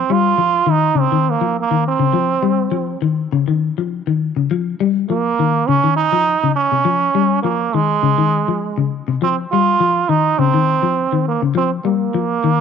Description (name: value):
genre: afrobeat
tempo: 102 BPM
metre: 4/4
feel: straight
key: unclear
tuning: A4 = 440 Hz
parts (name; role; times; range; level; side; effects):
- trombone with metal mute; melody; 0.0-12.6 s; Ab3 to F4; -16 LUFS; right 7 dB; cassette tape
- semi-hollow electric guitar; arpeggios; 0.0-12.6 s; C3 to G3; -17 LUFS; left 8 dB; none
room: moderate spring reverb, RT60 2.6 s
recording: home recording on cassette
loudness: -14 LUFS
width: side -7 dB against mid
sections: 0.0-12.6 A section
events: none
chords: 0.0 Cm; 4.5 Bbm7 (rootless); 9.2 Cm7